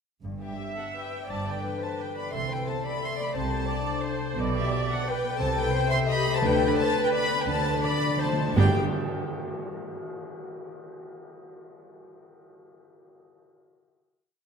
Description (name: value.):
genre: classical, orchestral ballroom waltz.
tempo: 153-190 BPM.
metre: 3/4.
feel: rubato.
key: G major.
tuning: A4 = 441 Hz.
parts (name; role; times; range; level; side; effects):
concert harp; arpeggios; 0.2-8.8 s; G2 to G5; -32 LUFS; left 6 dB; none.
warm chamber double bass section; bass; 0.2-8.8 s; G1 to D2; -32 LUFS; right 4 dB; none.
warm studio cello section; bass; 0.2-8.8 s; G2 to D3; -32 LUFS; right 3 dB; none.
warm chamber violin section; melody; 0.4-8.8 s; E5 to C6; -31 LUFS; left 2 dB; none.
dark chamber violin section; second line; 0.4-8.8 s; G4 to E5; -33 LUFS; left 4 dB; none.
warm chamber viola section; accompaniment; 0.6-8.8 s; B3 to E5; -32 LUFS; right 3 dB; none.
cymbal swell and tam-tam; percussion; 6.4-10.0 s; none; -38 LUFS; left 1 dB; none.
timpani; percussion; 6.4-8.7 s; G2 to D3; -33 LUFS; right 1 dB; none.
room: wet concert hall reverb, RT60 2.3 s.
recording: none.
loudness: -24 LUFS.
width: side -6 dB against mid.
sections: 0.2-8.6 A section; 8.6-9.7 final chord.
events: slowing down 5.9-8.6; timpani fill 7.5-8.6; band accent 8.6-8.9.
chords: 0.2 G; 2.3 Am/C; 4.4 G/B; 5.4 Am7b5/C; 6.4 Am11/D; 7.5 D5; 8.6 G.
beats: | 0.24 0.59 0.95 | 1.29 1.63 2.00 | 2.34 2.68 3.03 | 3.36 3.69 4.04 | 4.37 4.71 5.06 | 5.39 5.73 6.08 | 6.42 6.76 7.12 | 7.47 7.82 8.20 | 8.56 8.93 9.32.